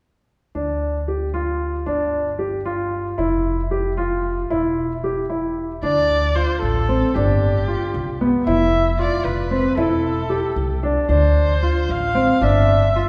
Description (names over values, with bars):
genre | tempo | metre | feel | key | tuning
contemporary instrumental, chamber music in an uneven meter | 228 BPM (eighths) | 5/8 | straight | unclear | A4 = 440 Hz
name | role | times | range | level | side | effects
clear baby grand piano | arpeggios | 0.5-13.1 s | B3 to G4 | -23 LUFS | equal | none
upright bass | bass | 0.6-13.0 s | E1 to D2 | -24 LUFS | equal | none
dark erhu | melody | 5.8-13.1 s | G4 to F5 | -25 LUFS | equal | none
room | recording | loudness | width
wet concert hall reverb, RT60 2.3 s | heard from further back in the room | -20 LUFS | mono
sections
0.6-5.8 A section; 5.8-13.1 B section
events
none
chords
0.6 Dm; 1.9 G5; 3.2 Fsus2; 4.5 Em; 5.8 Dm7; 7.1 G7; 8.5 F5; 9.8 C6/E; 11.1 Dm7; 12.4 G7(no3)